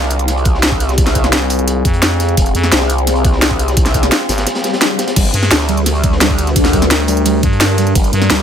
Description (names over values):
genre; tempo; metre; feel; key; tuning
dark technical drum and bass; 172 BPM; 4/4; straight; unclear; A4 = 436 Hz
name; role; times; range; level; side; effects
deep dark ambient pad; sustained chords; 0.0-8.4 s; G3 to Bb4; -20 LUFS; left 2 dB; chorus, built-in reverb, sidechain pumping
growl bass; bass; 0.0-8.4 s; F1 to D2; -16 LUFS; equal; chorus, overdrive
crunchy breakbeat drum kit; drums; 0.0-8.4 s; hi-hat, snare drum; -24 LUFS; equal; none
drum and bass drum kit; drums; 0.1-8.4 s; crash cymbal, hi-hat, ride cymbal, snare drum; -16 LUFS; equal; overdrive
electronic kick drum; drums; 0.5-8.0 s; none; -15 LUFS; equal; overdrive
growling FM bass; bass; 1.3-8.3 s; Ab1 to G2; -15 LUFS; equal; none
swell; sound effects; 4.6-5.2 s; none; -24 LUFS; left 5 dB; none
soft round pluck; arpeggios; 5.2-8.4 s; G3 to D4; -19 LUFS; right 2 dB; ensemble chorus, sidechain pumping, digital delay
room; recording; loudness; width
digital ambience; none; -11 LUFS; side -8 dB against mid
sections
0.0-8.4 A section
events
swell 4.6-5.2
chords
0.0 Fm; 5.2 Gm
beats
0.28 0.63 | 0.98 1.33 1.68 2.02 | 2.37 2.72 3.07 3.42 | 3.77 4.12 4.47 4.82 | 5.16 5.51 5.86 6.21 | 6.56 6.91 7.26 7.61 | 7.96 8.30